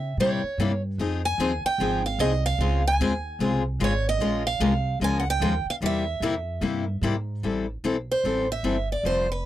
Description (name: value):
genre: acoustic string swing (jazz manouche)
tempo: 149 BPM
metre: 4/4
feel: swing 62% on 8ths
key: unclear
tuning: A4 = 439 Hz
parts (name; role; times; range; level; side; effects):
- picked steel-string acoustic guitar; melody; 0.0-9.5 s; B4 to Ab5; -27 LUFS; right 3 dB; none
- upright bass; bass; 0.0-9.5 s; F1 to Db3; -28 LUFS; right 1 dB; none
- picked steel-string acoustic guitar; accompaniment; 0.2-9.3 s; C3 to C5; -25 LUFS; left 4 dB; none
room: little or no reverb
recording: dry, gritty hardware recording, transformer saturation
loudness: -23 LUFS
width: side -13 dB against mid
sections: 0.0-7.4 A section; 7.4-9.5 B section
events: none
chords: 0.0 C7b9; 1.0 Fm7; 2.6 Dbmaj9; 4.2 Bbm7; 5.8 C7; 7.4 Am7